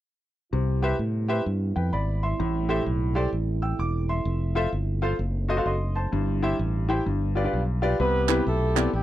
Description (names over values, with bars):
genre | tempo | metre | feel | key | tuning
uptempo gospel | 128 BPM | 4/4 | swing 64% on 8ths | C major | A4 = 439 Hz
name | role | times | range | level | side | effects
clear baby grand piano | accompaniment | 0.5-8.9 s | G2 to E6 | -27 LUFS | left 1 dB | none
dark French horn section | sustained chords | 0.5-8.0 s | E3 to E4 | -35 LUFS | right 6 dB | stereo widening
fingered electric bass | bass | 0.5-9.0 s | E1 to A2 | -26 LUFS | equal | none
mellow horn section | melody | 8.0-9.0 s | G3 to B4 | -26 LUFS | right 1 dB | none
group handclap | percussion | 8.3-8.8 s | none | -28 LUFS | right 22 dB | none
room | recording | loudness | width
little or no reverb | dry, close 1970s-style studio recording | -23 LUFS | side -13 dB against mid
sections
0.5-8.0 A section; 8.0-9.0 B section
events
none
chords
0.5 Cmaj7; 2.4 Am7; 4.3 Fmaj7; 5.2 F#dim7; 6.1 C/G; 7.1 G7; 8.0 Cmaj7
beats
| 0.52 0.99 1.46 1.92 | 2.39 2.86 3.32 3.79 | 4.26 4.72 5.19 5.66 | 6.13 6.59 7.06 7.53 | 8.00 8.46 8.93